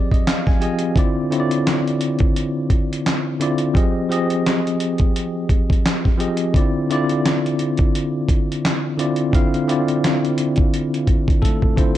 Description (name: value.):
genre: lo-fi hip hop.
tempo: 86 BPM.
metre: 4/4.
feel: swing 57% on 16ths.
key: unclear.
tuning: A4 = 438 Hz.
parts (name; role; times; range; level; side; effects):
bell-like tine electric piano; accompaniment; 0.0-12.0 s; D3 to Ab5; -20 LUFS; left 1 dB; fast stereo tremolo, cassette tape.
dusty soul sampler-style drum kit; drums; 0.1-12.0 s; handclaps, hi-hat, kick drum, snare drum; -19 LUFS; equal; overdrive, vintage 12-bit sampler grit.
room: light reverb, digital ambience.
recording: dark, warm production.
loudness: -16 LUFS.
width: side -12 dB against mid.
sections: 0.0-12.0 A section.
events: drum fill 11.4-12.0.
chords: 0.0 Fm7; 1.0 Dm7; 3.8 Fm7; 6.5 Dm7.